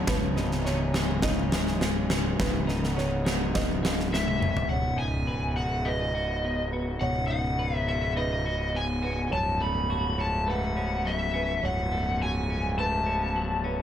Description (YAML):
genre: post-rock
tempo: 104 BPM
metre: 4/4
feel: straight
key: unclear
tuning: A4 = 440 Hz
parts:
  - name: warbly tape-like pad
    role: sustained chords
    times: 0.0-4.7 s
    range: E3 to G#5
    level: -38 LUFS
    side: left 3 dB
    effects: chorus, built-in reverb
  - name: twelve-string electric guitar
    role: arpeggios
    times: 0.0-13.8 s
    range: C#2 to B4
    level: -33 LUFS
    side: left 2 dB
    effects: tape echo
  - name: fuzz fingered electric bass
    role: bass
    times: 0.0-13.8 s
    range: C#1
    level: -30 LUFS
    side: equal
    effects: overdrive
  - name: felt-muted upright piano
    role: arpeggios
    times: 0.1-13.8 s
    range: B4 to D#5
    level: -38 LUFS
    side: right 5 dB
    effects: tape echo
  - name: huge arena drum kit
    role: drums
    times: 0.1-4.7 s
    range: kick drum, snare drum, toms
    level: -28 LUFS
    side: equal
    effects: none
  - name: lead guitar through a small cranked amp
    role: melody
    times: 4.1-13.6 s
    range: D#5 to B5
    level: -29 LUFS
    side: left 1 dB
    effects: overdrive, tape echo
room: light reverb, small room ambience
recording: none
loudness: -25 LUFS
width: side -10 dB against mid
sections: 0.0-4.7 A section; 4.7-13.8 B section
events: drum fill 4.1-4.7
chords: 0.1 C#madd9; 4.7 B/C#; 9.3 F#m/C#